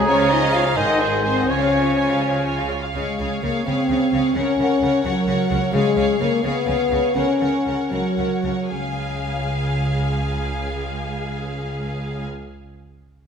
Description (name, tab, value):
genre	classical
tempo	74-88 BPM (dotted quarters)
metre	6/8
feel	rubato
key	Db major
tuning	A4 = 440 Hz
part	warm symphonic violin section	melody	0.0-12.3 s	F5 to Ab5	-31 LUFS	left 3 dB	none
part	clear symphonic violin section	second line	0.0-12.3 s	Ab4 to F5	-29 LUFS	equal	none
part	hollow concert flute	second line	0.0-2.7 s	Ab5 to Bb5	-26 LUFS	left 2 dB	none
part	mellow clarinet	second line	0.0-2.7 s	Ab4 to F5	-26 LUFS	equal	none
part	warm oboe	second line	0.0-2.6 s	Ab4 to Db5	-26 LUFS	right 3 dB	none
part	dark bassoon	accompaniment	0.0-2.7 s	Eb3 to F3	-27 LUFS	right 2 dB	none
part	rich symphonic viola section	accompaniment	0.0-12.2 s	F4 to F5	-29 LUFS	right 2 dB	none
part	mellow French horn section	sustained chords	0.0-12.3 s	Db3 to F4	-21 LUFS	left 2 dB	none
part	clear symphonic cello section	bass	0.0-12.3 s	Db2 to Db3	-29 LUFS	right 3 dB	none
part	rich symphonic double bass section	bass	0.0-12.3 s	Ab1 to Db2	-29 LUFS	right 2 dB	none
room	wet scoring stage reverb, RT60 1.4 s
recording	faint mains hum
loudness	-18 LUFS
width	side -7 dB against mid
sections	0.0-3.0 A section; 3.0-8.7 B section; 8.7-11.8 C section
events	slowing down 5.0-8.7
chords	0.1 Db; 0.8 Ab7b9; 1.5 Db; 4.4 Gb/Db; 5.7 Db7; 7.2 Gb/Db; 8.7 Db